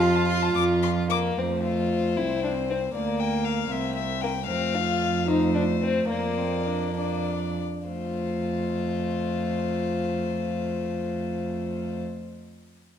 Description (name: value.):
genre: quick classical-period movement for string quartet.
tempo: 63-79 BPM (dotted quarters).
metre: 6/8.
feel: rubato.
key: F major.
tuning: A4 = 441 Hz.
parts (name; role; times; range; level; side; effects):
warm violin; melody; 0.0-12.0 s; C5 to D6; -31 LUFS; left 9 dB; none.
dark violin; second line; 0.0-12.0 s; Bb3 to F4; -29 LUFS; left 4 dB; none.
warm viola; accompaniment; 0.0-12.0 s; A3 to F4; -30 LUFS; right 1 dB; none.
dark cello; bass; 0.0-12.0 s; C2 to F2; -28 LUFS; right 4 dB; none.
room: wet recital hall reverb, RT60 1.5 s.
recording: none.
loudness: -24 LUFS.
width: side -8 dB against mid.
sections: 0.0-1.4 A section; 1.4-7.9 B section; 7.9-11.5 C section.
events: slowing down 3.7-7.9.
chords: 0.0 F5; 1.4 F; 2.2 C; 2.9 Bb/D; 3.7 C; 4.5 F; 6.1 Bb/F; 7.9 F.